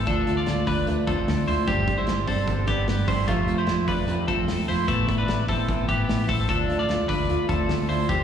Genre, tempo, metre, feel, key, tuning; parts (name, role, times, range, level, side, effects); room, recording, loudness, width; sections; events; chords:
jangly indie pop; 150 BPM; 4/4; straight; A4 = 440 Hz
fingerpicked steel-string acoustic guitar; accompaniment; 0.0-8.2 s; F2 to G4; -27 LUFS; right 4 dB; slapback echo
twelve-string electric guitar; arpeggios; 0.0-8.2 s; A3 to D5; -26 LUFS; left 2 dB; digital delay, slapback echo
vintage muted fingered electric bass; bass; 0.0-8.2 s; F1 to D2; -26 LUFS; left 1 dB
loose indie drum kit; drums; 0.1-8.2 s; hi-hat, kick drum, snare drum; -29 LUFS; equal
light reverb, studio reverb; live gig heard through the venue's PA, recital hall reverb; -21 LUFS; side -8 dB against mid
0.0-8.2 A section
0.1 Dm; 1.7 Gsus4; 3.3 F; 4.9 Asus2; 6.5 Dm